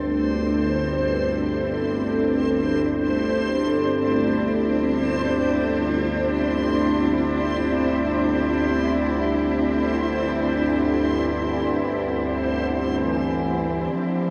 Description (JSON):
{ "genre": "dark ambient drone", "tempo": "free time", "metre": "none", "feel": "none", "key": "unclear", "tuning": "A4 = 444 Hz", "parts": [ { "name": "warm studio cello section", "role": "sustained chords", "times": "0.0-14.3 s", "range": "Bb3 to A4", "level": "-26 LUFS", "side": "equal", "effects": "none" }, { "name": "overtone-sweeping drone", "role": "drone", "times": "0.0-14.3 s", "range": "G1 to D2", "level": "-26 LUFS", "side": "equal", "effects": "chorus, built-in reverb" }, { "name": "backwards swelling texture", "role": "texture", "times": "0.0-14.3 s", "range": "C5", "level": "-31 LUFS", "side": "equal", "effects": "built-in reverb" }, { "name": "warm bass clarinet", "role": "melody", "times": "13.0-14.3 s", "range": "E3 to F3", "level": "-29 LUFS", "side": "equal", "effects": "diffuse ambient delay" } ], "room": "wet huge ambient reverb, RT60 8.1 s", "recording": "worn, warbling old tape, cassette tape, warbly pitch drift, small room ambience", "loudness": "-22 LUFS", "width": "mono", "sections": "0.0-13.9 A section", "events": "none", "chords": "0.0 Gsus2" }